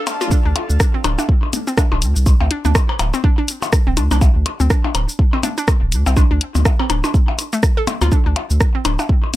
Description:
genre	minimal techno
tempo	123 BPM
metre	4/4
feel	swing 58% on 16ths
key	D minor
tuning	A4 = 438 Hz
part	hollow square pluck	riff	0.0-9.0 s	A3 to A4	-24 LUFS	equal	chorus, cassette tape, sidechain pumping, tape echo
part	saturated sub bass	bass	0.1-9.0 s	D1 to D2	-17 LUFS	equal	sidechain pumping, high-pass filter
part	house drum kit	drums	0.1-9.4 s	cabasa, hi-hat, rim click	-22 LUFS	equal	none
part	percussion blips	percussion	0.1-9.4 s	none	-24 LUFS	left 4 dB	none
part	electronic kick drum	drums	0.3-9.2 s	none	-14 LUFS	equal	high-pass filter on kick
room	little or no reverb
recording	high-pass filter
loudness	-14 LUFS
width	side -15 dB against mid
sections	0.3-9.4 A section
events	drop 0.3-9.4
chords	none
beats	| 0.31 0.80 1.29 1.78 | 2.26 2.75 3.24 3.73 | 4.21 4.70 5.19 5.68 | 6.17 6.65 7.14 7.63 | 8.12 8.61 9.09

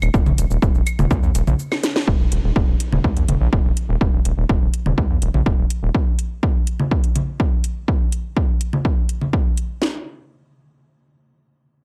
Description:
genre	melodic techno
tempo	124 BPM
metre	4/4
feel	straight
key	unclear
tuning	A4 = 443 Hz
part	gritty driven synth bass	bass	0.0-5.9 s	Eb1 to Eb2	-22 LUFS	equal	sidechain pumping
part	house drum kit	drums	0.0-9.7 s	claves, congas, hi-hat, shaker, snare drum	-25 LUFS	equal	overdrive
part	house drum kit	drums	0.1-9.9 s	kick drum, snare drum	-21 LUFS	equal	overdrive
room	little or no reverb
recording	none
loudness	-19 LUFS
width	mono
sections	0.0-2.1 A section; 2.1-9.8 B section; 9.8-11.8 C section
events	drop 0.0-2.1; break 1.6-2.1; drum fill 1.7-2.1; band accent 2.0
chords	none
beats	| 0.14 0.62 1.11 1.59 | 2.07 2.56 3.04 3.53 | 4.01 4.49 4.98 5.46 | 5.95 6.43 6.91 7.40 | 7.88 8.37 8.85 9.33 | 9.82

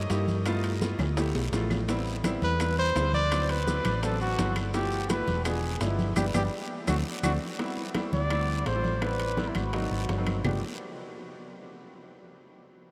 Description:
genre	Afro-Cuban jazz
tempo	168 BPM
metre	4/4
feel	straight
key	unclear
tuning	A4 = 440 Hz
part	breathy trumpet	melody	0.0-0.1, 2.4-10.6 s	E4 to D5	-34 LUFS	equal	delay
part	hollow-body short-scale fingered electric bass	bass	0.0-10.6 s	E1 to G2	-32 LUFS	equal	none
part	clear baby grand piano	accompaniment	0.1-10.6 s	F3 to G4	-36 LUFS	equal	none
part	bongos	percussion	0.1-10.5 s	none	-44 LUFS	equal	none
part	congas	percussion	0.1-10.5 s	none	-38 LUFS	equal	none
part	guiro	percussion	0.1-10.5 s	none	-47 LUFS	equal	none
part	maracas	percussion	0.1-7.3 s	none	-48 LUFS	equal	none
part	timbales	percussion	0.1-10.5 s	none	-42 LUFS	equal	none
part	claves	percussion	0.5-10.5 s	none	-47 LUFS	equal	none
room	wet huge ambient reverb, RT60 7.3 s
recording	dreamy mix soaked in reverb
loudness	-28 LUFS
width	mono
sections	0.0-7.6 A section; 7.6-10.4 B section; 10.4-11.9 C section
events	drum fill 1.0-1.9, 6.2-7.6; band accent 6.2-7.6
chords	0.5 G13; 1.9 Am7; 3.3 D13; 4.7 G13; 5.5 E7b9; 6.2 G; 6.9 D7; 7.6 D13sus4; 8.3 D7sus4; 9.0 Am9; 9.7 Ab9; 10.4 G9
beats	0.10 | 0.46 0.82 1.18 1.53 | 1.89 2.25 2.60 2.96 | 3.31 3.67 4.03 4.38 | 4.74 5.10 5.45 5.81 | 6.16 6.52 6.88 7.23 | 7.59 7.95 8.30 8.66 | 9.02 9.38 9.73 10.09 | 10.45

